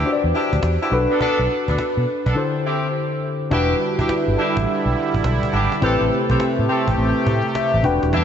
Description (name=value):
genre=R&B, new jack swing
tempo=104 BPM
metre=4/4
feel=swing 65% on 16ths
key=E minor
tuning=A4 = 441 Hz
part: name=tine electric piano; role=accompaniment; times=0.0-8.2 s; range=D3 to G5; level=-22 LUFS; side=left 3 dB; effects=analog chorus
part: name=warm horn section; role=stabs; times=0.0-8.2 s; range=B3 to A4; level=-24 LUFS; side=right 1 dB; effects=analog delay
part: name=vintage muted fingered electric bass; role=bass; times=0.0-8.2 s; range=D#1 to B2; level=-21 LUFS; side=right 1 dB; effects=none
part: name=cajon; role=drums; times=0.1-8.2 s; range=none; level=-29 LUFS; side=equal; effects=none
part: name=sweeping resonant pad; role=sustained chords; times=3.5-8.2 s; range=C3 to G4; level=-22 LUFS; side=right 1 dB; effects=chorus
room=moderate lush hall reverb, RT60 2.6 s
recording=dreamy mix soaked in reverb, nothing above 7.9 kHz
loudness=-17 LUFS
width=side -8 dB against mid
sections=0.0-3.5 A section; 3.5-8.2 B section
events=break 2.4-3.5; tine electric piano fill 7.3-8.1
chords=0.0 Em7; 0.9 Bm7; 2.4 D9sus4; 3.5 Em7; 5.8 Am7